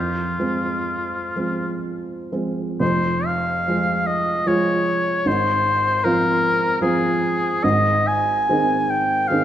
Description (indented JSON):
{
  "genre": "classical, romantic duo for oboe and grand piano",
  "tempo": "60-79 BPM",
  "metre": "3/4",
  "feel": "rubato",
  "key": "F minor",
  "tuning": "A4 = 438 Hz",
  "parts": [
    { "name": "clear oboe", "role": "melody", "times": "0.0-9.4 s", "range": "F4 to Ab5", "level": "-20 LUFS", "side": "left 1 dB", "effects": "none" },
    { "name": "dark baby grand piano", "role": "accompaniment", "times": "0.0-9.4 s", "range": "F1 to Ab4", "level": "-22 LUFS", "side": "right 2 dB", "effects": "none" }
  ],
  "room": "moderate scoring stage reverb, RT60 2.0 s",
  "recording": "none",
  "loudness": "-18 LUFS",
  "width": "side -11 dB against mid",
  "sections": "0.0-2.8 A section; 2.8-9.4 B section",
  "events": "none",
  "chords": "0.0 Fm; 5.3 Fm/Ab; 7.6 Ab"
}